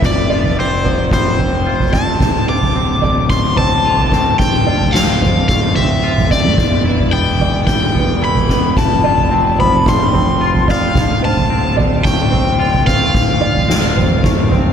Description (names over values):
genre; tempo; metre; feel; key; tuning
post-rock; 110 BPM; 4/4; straight; D dorian; A4 = 440 Hz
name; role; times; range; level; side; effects
cranked stack guitar; melody; 0.0-14.7 s; C5 to D6; -17 LUFS; left 3 dB; overdrive, phaser, ping-pong delay
felt-muted upright piano; arpeggios; 0.0-14.7 s; B4 to D5; -25 LUFS; right 3 dB; wide subtle chorus, ping-pong delay
twangy electric guitar; arpeggios; 0.0-14.7 s; D2 to F4; -23 LUFS; left 1 dB; wide subtle chorus, ping-pong delay
fuzz fingered electric bass; bass; 0.0-14.7 s; D1 to F1; -19 LUFS; equal; overdrive
soft-mallet drum kit; drums; 0.0-14.6 s; kick drum, snare drum, toms; -15 LUFS; equal; none
room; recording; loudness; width
moderate huge ambient reverb, RT60 4.2 s; dreamy mix soaked in reverb; -12 LUFS; side -8 dB against mid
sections
0.0-14.7 A section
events
none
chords
0.0 Fsus2; 2.2 Dm7; 6.6 Em7; 8.8 Fadd9; 11.0 Dm7